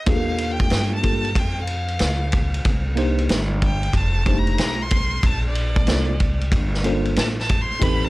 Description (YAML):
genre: hip hop, jazz-hop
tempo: 93 BPM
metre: 4/4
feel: swing 65% on 16ths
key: unclear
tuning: A4 = 445 Hz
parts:
  - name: rich violin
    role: melody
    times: 0.0-8.1 s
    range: D5 to C6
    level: -28 LUFS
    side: equal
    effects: analog delay
  - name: tine electric piano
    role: accompaniment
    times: 0.1-8.1 s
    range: G3 to C5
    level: -24 LUFS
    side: equal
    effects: overdrive, fast stereo tremolo
  - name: upright bass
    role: bass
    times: 0.1-8.1 s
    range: F1 to G2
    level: -23 LUFS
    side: equal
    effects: none
  - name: vintage drum kit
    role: drums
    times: 0.1-8.0 s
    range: hi-hat, kick drum, ride cymbal, snare drum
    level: -22 LUFS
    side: equal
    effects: none
room: little or no reverb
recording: dry, gritty hardware recording, cassette tape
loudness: -18 LUFS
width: side -19 dB against mid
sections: 0.0-8.1 A section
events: violin solo 0.0-8.1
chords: 0.1 Ebmaj9#11; 2.7 Cm7; 3.9 F13; 5.2 Bbmaj9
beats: | 0.07 0.72 1.36 2.01 | 2.65 3.30 3.94 4.59 | 5.23 5.88 6.53 7.17 | 7.82